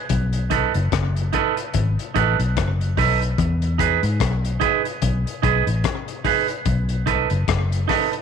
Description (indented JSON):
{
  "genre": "roots reggae",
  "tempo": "73 BPM",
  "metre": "4/4",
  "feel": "swing 57% on 16ths",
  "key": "E major",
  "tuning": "A4 = 444 Hz",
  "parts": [
    { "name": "vintage muted fingered electric bass", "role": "bass", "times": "0.1-7.9 s", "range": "F#1 to G#2", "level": "-21 LUFS", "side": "left 1 dB", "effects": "none" },
    { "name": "crunchy breakbeat drum kit", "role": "drums", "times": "0.1-8.2 s", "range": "hi-hat, kick drum, rim click", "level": "-26 LUFS", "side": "left 6 dB", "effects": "none" },
    { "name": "clean electric guitar", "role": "accompaniment", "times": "0.5-8.1 s", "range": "D#4 to B4", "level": "-22 LUFS", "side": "right 13 dB", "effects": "dub echo" }
  ],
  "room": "light reverb",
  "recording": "1960s-style stereo with parts hard left and right",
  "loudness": "-18 LUFS",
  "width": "side -7 dB against mid",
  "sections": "0.0-8.2 A section",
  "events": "none",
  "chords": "0.1 B7; 3.4 Emaj7; 6.7 B7",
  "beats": "| 0.10 0.92 1.74 2.56 | 3.38 4.20 5.02 5.84 | 6.66 7.48"
}